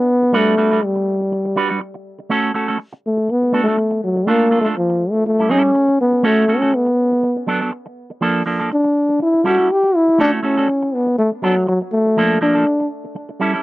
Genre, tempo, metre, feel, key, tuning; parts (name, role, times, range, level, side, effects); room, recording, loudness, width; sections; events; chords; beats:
disco; 122 BPM; 4/4; swing 56% on 16ths; A4 = 438 Hz
mellow trombone; melody; 0.0-12.9 s; F3 to G4; -15 LUFS; left 1 dB; tape echo
electric guitar with an envelope filter; accompaniment; 0.0-13.6 s; F3 to B4; -19 LUFS; right 3 dB
light reverb; dry, close 1970s-style studio recording; -14 LUFS; side -18 dB against mid
0.0-2.3 A section; 2.3-13.6 B section
trombone solo 2.3-13.6
0.0 Em9 (rootless); 2.3 A6; 3.3 Bm7; 4.3 F6; 5.3 A7; 6.2 A69; 7.2 Bm7; 8.2 Bbmaj7; 9.2 A7; 10.2 A69; 11.2 Bm7; 12.2 Bbmaj7
| 0.34 0.83 1.32 1.81 | 2.31 2.80 3.29 3.78 | 4.27 4.76 5.26 5.75 | 6.24 6.73 7.23 7.72 | 8.21 8.71 9.20 9.69 | 10.19 10.68 11.18 11.67 | 12.17 12.66 13.16